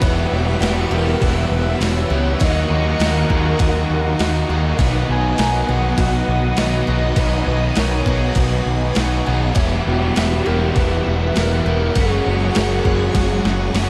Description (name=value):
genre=rock, shoegaze and dream pop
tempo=100 BPM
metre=4/4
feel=straight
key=B major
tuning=A4 = 441 Hz
part: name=string machine, violins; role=sustained chords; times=0.0-13.9 s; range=G3 to E6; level=-30 LUFS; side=equal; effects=ensemble chorus
part: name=picked twelve-string acoustic guitar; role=arpeggios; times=0.0-13.9 s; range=F#4 to C#5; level=-33 LUFS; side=equal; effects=none
part: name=overdriven electric guitar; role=riff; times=0.0-13.9 s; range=E2 to G4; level=-29 LUFS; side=equal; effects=lush chorus
part: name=overdriven electric guitar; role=riff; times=0.0-13.9 s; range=B2 to F#4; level=-27 LUFS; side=equal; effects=none
part: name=overdriven semi-hollow guitar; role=riff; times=0.0-13.9 s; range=E2 to G4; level=-28 LUFS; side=equal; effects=reverse reverb
part: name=growling picked electric bass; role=bass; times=0.0-13.9 s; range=E1 to D#2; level=-22 LUFS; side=equal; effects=overdrive
part: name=clean 12-bit digital drum machine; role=drums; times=0.0-13.9 s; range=hi-hat, kick drum, snare drum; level=-23 LUFS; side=equal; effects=none
part: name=pure sine lead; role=melody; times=0.3-13.9 s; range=F#4 to G#5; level=-28 LUFS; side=equal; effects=chorus, analog delay
room=moderate plate reverb, RT60 2.9 s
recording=dreamy mix soaked in reverb, lossy compression artefacts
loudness=-18 LUFS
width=mono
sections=0.0-13.9 A section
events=drum fill 13.2-13.9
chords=0.0 Emadd9; 2.4 D#m7; 4.8 B; 9.6 Emadd9; 12.0 F#sus2